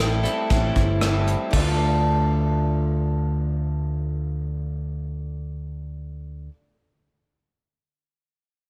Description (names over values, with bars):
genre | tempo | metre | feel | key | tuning
folk rock and heartland rock | free time | none | none | D minor | A4 = 441 Hz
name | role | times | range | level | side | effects
pedal steel guitar | melody | 0.0-0.7 s | none | barely audible | none | none
picked twelve-string acoustic guitar | accompaniment | 0.0-6.6 s | A2 to A4 | -31 LUFS | equal | slapback echo
electric guitar through a small old amp | riff | 0.0-6.5 s | A2 to F4 | -32 LUFS | equal | slapback echo
fingered electric bass | bass | 0.0-6.5 s | G1 to D2 | -26 LUFS | equal | none
soft brush drum kit | drums | 0.2-1.6 s | crash cymbal, hi-hat, kick drum, rim click | -28 LUFS | equal | none
room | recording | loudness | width
moderate lush hall reverb, RT60 1.8 s, small room ambience | big arena sound | -23 LUFS | mono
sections
0.0-1.5 A section; 1.5-5.6 B section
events
none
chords
0.0 Am7; 1.5 Dm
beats
free time